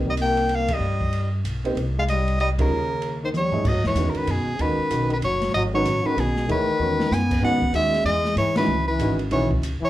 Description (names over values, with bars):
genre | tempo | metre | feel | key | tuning
modal jazz | 190 BPM | 3/4 | swing 61% on 8ths | C phrygian, G# minor from 3.6 s | A4 = 436 Hz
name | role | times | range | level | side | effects
warm upright piano | accompaniment | 0.0-9.5 s | D#3 to Db5 | -27 LUFS | right 2 dB | none
upright bass | bass | 0.0-9.8 s | F#1 to G#2 | -26 LUFS | equal | none
bright soprano saxophone | melody | 0.1-9.9 s | G#4 to G#5 | -24 LUFS | equal | none
warm trombone | second line | 0.1-9.9 s | B2 to B3 | -27 LUFS | left 2 dB | none
open jazz drum kit | drums | 0.1-9.7 s | crash cymbal, hi-hat, kick drum, ride cymbal, snare drum, toms | -30 LUFS | equal | none
room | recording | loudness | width
wet club reverb, RT60 0.5 s | heard from further back in the room | -20 LUFS | side -14 dB against mid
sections
0.0-3.6 A section; 3.6-9.9 B section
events
band accent 0.7, 2.5, 8.5; drum fill 3.3-3.6, 6.8-7.1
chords
0.0 Cm7; 2.7 Eb7; 3.6 G#m7; 7.4 E6